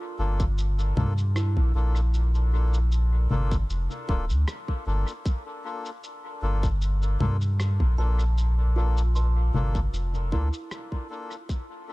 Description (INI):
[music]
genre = ambient dub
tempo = 77 BPM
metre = 4/4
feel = swing 53% on 16ths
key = G dorian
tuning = A4 = 440 Hz
[part]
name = kalimba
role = arpeggios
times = 0.0-11.9 s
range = E4 to C6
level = -40 LUFS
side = right 6 dB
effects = dub echo
[part]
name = melodica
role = stabs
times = 0.2-11.9 s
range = Bb3 to A4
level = -36 LUFS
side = left 3 dB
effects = dub echo
[part]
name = warm sub bass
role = bass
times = 0.2-10.5 s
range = D1 to G2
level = -23 LUFS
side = equal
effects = tube saturation
[part]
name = electronic kick drum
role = drums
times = 0.4-11.7 s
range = none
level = -27 LUFS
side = equal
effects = overdrive
[part]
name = electronic shaker, congas and rim click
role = drums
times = 0.4-11.7 s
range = none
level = -33 LUFS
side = left 1 dB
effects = dub echo
[sound]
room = digital ambience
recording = dark, warm production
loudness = -23 LUFS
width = side -21 dB against mid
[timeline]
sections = 0.0-11.9 A section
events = fade-out 9.4-11.9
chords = 0.0 Gm9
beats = 0.58 1.36 | 2.14 2.92 3.70 4.48 | 5.25 6.03 6.81 7.59 | 8.37 9.15 9.93 10.71 | 11.49